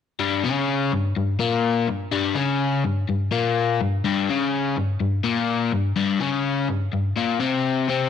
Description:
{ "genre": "rock", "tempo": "125 BPM", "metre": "4/4", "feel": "straight", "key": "unclear", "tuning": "A4 = 440 Hz", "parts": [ { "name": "crunchy overdriven guitar", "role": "solo", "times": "0.2-8.1 s", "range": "G2 to Db4", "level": "-20 LUFS", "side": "left 4 dB", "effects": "none" } ], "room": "moderate echo chamber reverb, RT60 1.6 s", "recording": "none", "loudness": "-20 LUFS", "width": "side -8 dB against mid", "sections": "0.2-8.1 A section", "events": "none", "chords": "0.2 Gdim" }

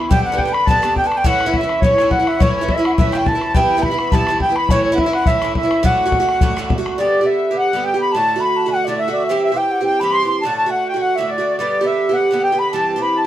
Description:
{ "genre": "celtic folk, Celtic reel", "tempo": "209 BPM", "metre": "4/4", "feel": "swing 54% on 8ths", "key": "D major, G major from 7.0 s", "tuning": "A4 = 440 Hz", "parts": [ { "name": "Irish bouzouki", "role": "accompaniment", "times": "0.0-13.3 s", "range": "G2 to G4", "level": "-19 LUFS", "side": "right 2 dB", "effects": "none" }, { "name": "reedy baroque flute", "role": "melody", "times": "0.1-13.3 s", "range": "C#5 to C6", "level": "-19 LUFS", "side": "equal", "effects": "none" }, { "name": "accordion", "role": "second line", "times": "0.1-13.3 s", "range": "C#5 to C6", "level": "-21 LUFS", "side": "left 2 dB", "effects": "light tremolo tuning" }, { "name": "bodhran", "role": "percussion", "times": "0.1-6.9 s", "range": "none", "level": "-18 LUFS", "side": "left 2 dB", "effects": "none" } ], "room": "moderate small room reverb, RT60 0.5 s", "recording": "dark, warm production", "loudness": "-14 LUFS", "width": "side -12 dB against mid", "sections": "0.0-7.0 A section; 7.0-13.3 B section", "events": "none", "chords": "0.1 G; 1.3 A; 3.6 Em; 4.7 A; 5.8 D; 7.0 G; 8.1 D; 9.3 C; 10.4 D; 11.6 G; 12.7 C" }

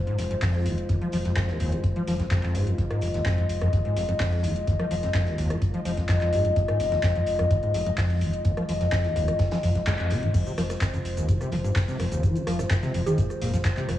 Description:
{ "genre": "acid house", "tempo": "127 BPM", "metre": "4/4", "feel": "straight", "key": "unclear", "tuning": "A4 = 440 Hz", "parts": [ { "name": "dark analog pad", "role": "sustained chords", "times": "0.0-14.0 s", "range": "Ab3 to Eb5", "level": "-29 LUFS", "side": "left 2 dB", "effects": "chorus, sidechain pumping, cassette tape" }, { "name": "acid bass, saw", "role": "riff", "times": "0.1-14.0 s", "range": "F1 to Ab3", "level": "-27 LUFS", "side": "equal", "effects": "overdrive, analog chorus, sidechain pumping, cassette tape, analog delay" }, { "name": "booming analog drum machine", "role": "drums", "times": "0.1-14.0 s", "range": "cabasa, crash cymbal, handclaps, hi-hat, rim click, toms", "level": "-34 LUFS", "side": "equal", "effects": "studio reverb, cassette tape" }, { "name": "warm sub bass", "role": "bass", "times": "0.2-14.0 s", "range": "Eb1 to F1", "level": "-32 LUFS", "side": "equal", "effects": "sidechain pumping" }, { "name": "deep reggae drum kit", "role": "drums", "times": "0.2-14.0 s", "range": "hi-hat, snare drum", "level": "-41 LUFS", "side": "right 2 dB", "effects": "high-pass filter on hats, studio reverb, cassette tape, high-pass filter on snare, high-pass filter on room" }, { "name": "electronic kick drum", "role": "drums", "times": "0.4-13.7 s", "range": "none", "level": "-26 LUFS", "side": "equal", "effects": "studio reverb, cassette tape" }, { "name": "mallet-like synth pluck", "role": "melody", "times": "13.1-13.5 s", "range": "Ab4", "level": "-31 LUFS", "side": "right 4 dB", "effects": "chorus, phaser, cassette tape, tape echo" } ], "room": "moderate spring reverb, RT60 1.8 s, digital ambience", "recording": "home recording on cassette, small room ambience", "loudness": "-22 LUFS", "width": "side -13 dB against mid", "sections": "0.0-10.3 A section; 10.3-14.0 B section", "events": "band accent 9.9; drum fill 10.0-10.3; drop 10.3-14.0", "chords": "0.0 Fm" }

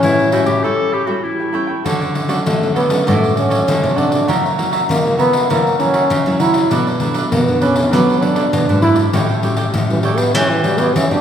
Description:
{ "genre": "samba and choro", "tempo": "99 BPM", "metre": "4/4", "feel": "straight", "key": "D major", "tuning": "A4 = 440 Hz", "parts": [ { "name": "breathy trombone", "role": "melody", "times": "0.0-11.2 s", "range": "E3 to E4", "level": "-17 LUFS", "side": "equal", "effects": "none" }, { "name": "breathy clarinet", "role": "second line", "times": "0.0-1.9 s", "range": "E4 to A4", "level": "-19 LUFS", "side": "left 2 dB", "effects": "none" }, { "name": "nylon-string guitar", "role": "accompaniment", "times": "0.0-11.2 s", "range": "F#2 to F#4", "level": "-24 LUFS", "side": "left 2 dB", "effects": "none" }, { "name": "nylon-string guitar", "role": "bass", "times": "0.0-11.2 s", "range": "G#2 to F#3", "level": "-19 LUFS", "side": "equal", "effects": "none" }, { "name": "pandeiro", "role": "percussion", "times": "0.0-11.2 s", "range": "none", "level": "-21 LUFS", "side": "left 2 dB", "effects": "none" }, { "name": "cavaquinho", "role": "accompaniment", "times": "0.3-11.2 s", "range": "D4 to G5", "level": "-22 LUFS", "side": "right 3 dB", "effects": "none" } ], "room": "wet recital hall reverb, RT60 1.8 s", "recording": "recorded in a church or concert hall", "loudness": "-13 LUFS", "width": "side -9 dB against mid", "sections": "0.0-1.9 A section; 1.9-11.2 B section", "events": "break 0.6-1.9; trombone solo 1.9-11.2", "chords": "0.0 A7; 1.9 Dmaj7; 4.3 F#7/C#; 6.7 Bm7; 9.1 A13" }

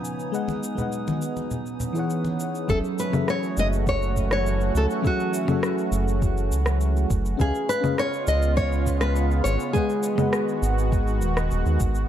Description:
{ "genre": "sunset chillout", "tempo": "102 BPM", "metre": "4/4", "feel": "straight", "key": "F# dorian", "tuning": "A4 = 440 Hz", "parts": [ { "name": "mellow FM electric piano", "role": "accompaniment", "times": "0.0-12.1 s", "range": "C#3 to F#5", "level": "-29 LUFS", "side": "moving between left 5 dB and right 1 dB", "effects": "chorus, auto-pan, ping-pong delay" }, { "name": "lush unison pad", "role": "sustained chords", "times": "0.0-12.1 s", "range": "C#3 to G#5", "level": "-29 LUFS", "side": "right 1 dB", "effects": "chorus" }, { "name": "electronic shaker, congas and rim click", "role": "drums", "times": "0.0-12.1 s", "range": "none", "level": "-30 LUFS", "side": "left 2 dB", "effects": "none" }, { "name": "drifting glass-harmonics texture", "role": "texture", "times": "0.0-2.7 s", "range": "D#4 to D#6", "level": "-40 LUFS", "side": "right 2 dB", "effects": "chorus, built-in reverb" }, { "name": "congas", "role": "percussion", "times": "0.5-2.4 s", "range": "none", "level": "-31 LUFS", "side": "left 2 dB", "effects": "none" }, { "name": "nylon-string guitar", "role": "melody", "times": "2.7-10.9 s", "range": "F#4 to D#5", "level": "-27 LUFS", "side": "left 1 dB", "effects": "ping-pong delay" }, { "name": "round analog bass", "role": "bass", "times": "2.7-12.1 s", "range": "D#1 to D#2", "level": "-23 LUFS", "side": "equal", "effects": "none" }, { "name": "electronic kick drum", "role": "drums", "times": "2.7-11.9 s", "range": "none", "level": "-26 LUFS", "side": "right 1 dB", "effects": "none" } ], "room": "light reverb, digital ambience", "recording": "dark, warm production", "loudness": "-21 LUFS", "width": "side -10 dB against mid", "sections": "0.0-2.7 A section; 2.7-12.1 B section", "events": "filter sweep on analog synth pad 0.0-2.7", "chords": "0.3 G#m7; 1.5 E6; 2.7 F#m7; 7.4 C#7; 9.7 G#m7" }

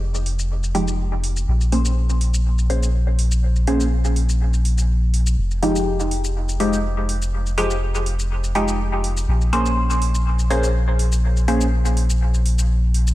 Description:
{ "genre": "dub techno", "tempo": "123 BPM", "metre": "4/4", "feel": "straight", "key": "unclear", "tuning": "A4 = 441 Hz", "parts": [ { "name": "soft dub sub bass", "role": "bass", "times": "0.0-13.1 s", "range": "F1 to Bb1", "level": "-19 LUFS", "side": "equal", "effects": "tube saturation" }, { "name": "electronic shaker and hi-hat", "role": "drums", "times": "0.1-13.1 s", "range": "none", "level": "-32 LUFS", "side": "equal", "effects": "none" }, { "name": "filtered dub chord stab", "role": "stabs", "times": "0.7-11.7 s", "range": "F3 to C5", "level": "-23 LUFS", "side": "equal", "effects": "chorus, phaser, dub echo" } ], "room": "digital ambience", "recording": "none", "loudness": "-17 LUFS", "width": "side -16 dB against mid", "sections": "0.0-13.1 A section", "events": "none", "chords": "0.0 Fm9; 1.5 Bbm9; 5.4 Fm9; 9.3 Bbm9" }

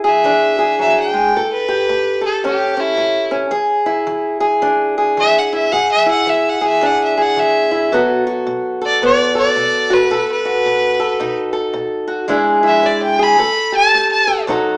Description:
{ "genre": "acoustic country blues, solo or duo", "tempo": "110 BPM", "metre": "4/4", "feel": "swing 61% on 8ths", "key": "E mixolydian", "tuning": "A4 = 439 Hz", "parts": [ { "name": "fingerpicked acoustic archtop guitar", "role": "accompaniment", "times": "0.0-14.8 s", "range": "A2 to A4", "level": "-18 LUFS", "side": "equal", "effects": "none" }, { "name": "clear fiddle", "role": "melody", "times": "0.1-14.4 s", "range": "E4 to B5", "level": "-18 LUFS", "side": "equal", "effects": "none" } ], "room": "moderate large studio reverb, RT60 0.8 s", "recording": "band playing live in one room, small speaker sound", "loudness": "-15 LUFS", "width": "mono", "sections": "0.0-14.8 A section", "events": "fiddle solo 0.0-14.8", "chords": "0.0 E7; 1.3 A7; 3.5 E7; 7.9 B7; 12.3 E7; 13.4 Gadd9/A" }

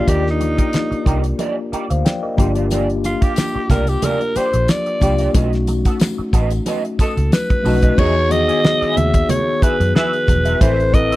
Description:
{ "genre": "lush 1970s-style soul", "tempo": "91 BPM", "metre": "4/4", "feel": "swing 54% on 16ths", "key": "E major from 8.0 s", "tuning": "A4 = 438 Hz", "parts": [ { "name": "growling alto saxophone", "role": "melody", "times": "0.0-11.2 s", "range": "Eb4 to E5", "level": "-19 LUFS", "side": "equal", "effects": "none" }, { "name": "mellow tine electric piano", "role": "accompaniment", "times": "0.0-11.2 s", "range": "D#3 to G5", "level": "-22 LUFS", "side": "left 3 dB", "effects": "fast stereo tremolo" }, { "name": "electric guitar through a small old amp", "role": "riff", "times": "0.0-11.2 s", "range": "Bb3 to F#5", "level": "-26 LUFS", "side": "right 4 dB", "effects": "wah, analog chorus" }, { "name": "vintage muted fingered electric bass", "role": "bass", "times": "0.1-11.1 s", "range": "E1 to F#2", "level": "-19 LUFS", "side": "equal", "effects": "tube saturation" }, { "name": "damped 70s drum kit", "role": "drums", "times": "0.1-11.2 s", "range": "crash cymbal, hi-hat, kick drum, snare drum", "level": "-17 LUFS", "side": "equal", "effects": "none" }, { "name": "congas", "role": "percussion", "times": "0.1-11.1 s", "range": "none", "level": "-26 LUFS", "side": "right 2 dB", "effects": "none" }, { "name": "tambourine", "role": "percussion", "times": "2.7-7.8 s", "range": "none", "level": "-38 LUFS", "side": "left 13 dB", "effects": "none" } ], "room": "little or no reverb", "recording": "dry, close 1970s-style studio recording", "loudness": "-14 LUFS", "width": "side -17 dB against mid", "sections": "0.0-8.0 A section; 8.0-11.2 B section", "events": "alto saxophone solo 0.0-8.0", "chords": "0.0 Ebmaj7; 2.4 Gm7; 5.3 B7; 8.0 Emaj7; 10.6 Amadd9" }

